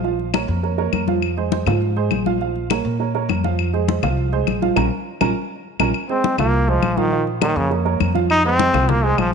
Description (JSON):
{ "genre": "latin, salsa", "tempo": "204 BPM", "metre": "4/4", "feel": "straight", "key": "F minor", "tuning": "A4 = 439 Hz", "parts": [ { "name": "dark upright piano", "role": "accompaniment", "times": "0.0-9.3 s", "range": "F3 to F5", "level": "-22 LUFS", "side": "right 12 dB", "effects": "none" }, { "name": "upright bass", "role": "bass", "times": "0.0-9.3 s", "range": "Bb1 to Bb2", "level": "-22 LUFS", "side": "equal", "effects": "none" }, { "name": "congas", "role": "percussion", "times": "0.0-9.3 s", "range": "none", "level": "-24 LUFS", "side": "left 12 dB", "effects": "none" }, { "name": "claves", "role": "percussion", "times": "0.3-9.3 s", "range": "none", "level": "-27 LUFS", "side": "left 12 dB", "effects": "none" }, { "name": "brilliant trombone", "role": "melody", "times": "6.1-9.3 s", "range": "Db3 to Eb4", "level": "-19 LUFS", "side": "left 1 dB", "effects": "none" } ], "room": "moderate echo chamber reverb, RT60 1.8 s, small room ambience", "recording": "1960s-style stereo with parts hard left and right, nothing above 10.9 kHz", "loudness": "-17 LUFS", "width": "side -6 dB against mid", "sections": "0.0-5.9 A section; 5.9-9.3 B section", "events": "drum fill 4.8-5.9; band accent 4.8-5.9; trombone solo 5.9-9.3", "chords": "0.0 Bbm; 1.2 Fm; 2.4 Bbm; 3.6 Fm; 4.8 Bbm; 5.9 Fm; 7.1 Bbm; 8.3 Fm", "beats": "| 0.04 0.34 0.63 0.93 | 1.22 1.52 1.81 2.11 | 2.40 2.70 3.00 3.29 | 3.59 3.88 4.18 4.47 | 4.77 5.06 5.36 5.65 | 5.95 6.24 6.53 6.83 | 7.12 7.42 7.71 8.01 | 8.30 8.59 8.89 9.18" }